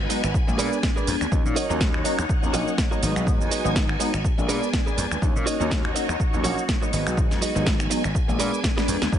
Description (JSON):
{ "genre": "filtered disco house", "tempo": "123 BPM", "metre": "4/4", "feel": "swing 56% on 16ths", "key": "Eb minor", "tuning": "A4 = 436 Hz", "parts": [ { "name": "funky polysynth comp", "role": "accompaniment", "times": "0.0-9.2 s", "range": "Gb3 to Eb4", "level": "-28 LUFS", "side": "left 1 dB", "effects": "chorus, phaser, cassette tape, sidechain pumping" }, { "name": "phased string machine", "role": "sustained chords", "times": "0.0-9.2 s", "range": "D4 to Ab5", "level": "-31 LUFS", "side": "equal", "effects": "ensemble chorus, phaser, sidechain pumping" }, { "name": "gritty slap bass", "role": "bass", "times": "0.0-9.2 s", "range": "Ab1 to Bb2", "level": "-28 LUFS", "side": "equal", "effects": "overdrive, sidechain pumping" }, { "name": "direct-recorded clean electric guitar", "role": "riff", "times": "0.1-9.1 s", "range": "Gb4 to Gb5", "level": "-30 LUFS", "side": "right 4 dB", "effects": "vintage 12-bit sampler grit, sidechain pumping" }, { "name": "house drum kit", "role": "drums", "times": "0.1-9.2 s", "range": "finger snaps, hi-hat, shaker, snare drum", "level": "-28 LUFS", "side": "right 1 dB", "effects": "sidechain pumping on perc, sidechain pumping on hats" }, { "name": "electronic kick drum", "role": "drums", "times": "0.3-9.2 s", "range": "none", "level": "-24 LUFS", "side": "equal", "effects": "none" } ], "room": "light reverb, digital ambience", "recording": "nothing above 10.7 kHz", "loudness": "-20 LUFS", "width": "side -10 dB against mid", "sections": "0.0-9.2 A section", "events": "drum fill 8.8-9.1", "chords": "0.3 Bb7b9; 1.3 Ebm7; 3.0 Abm7; 4.2 Bb7b9; 5.2 Ebm7; 6.9 Abm7; 8.1 Bb7b9" }